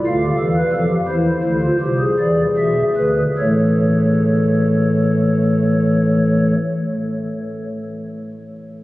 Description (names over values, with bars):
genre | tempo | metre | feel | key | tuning
classical, baroque-style 3-part fugue for pipe organ | 48-60 BPM (dotted quarters) | 6/8 | straight | unclear | A4 = 440 Hz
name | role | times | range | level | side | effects
pipe organ, stopped flute | solo | 0.0-6.6 s | A1 to F5 | -15 LUFS | equal | none
room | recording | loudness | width
wet cathedral reverb, RT60 5.5 s | recorded on a phone in the room, studio reverb | -14 LUFS | side -18 dB against mid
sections
0.0-3.4 A section; 3.4-8.4 B section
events
slowing down 0.0-3.4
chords
0.1 Dm; 1.1 Cadd9; 2.2 E7; 3.4 A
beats
0.06 | 1.09 2.19 | 3.38 4.63 | 5.88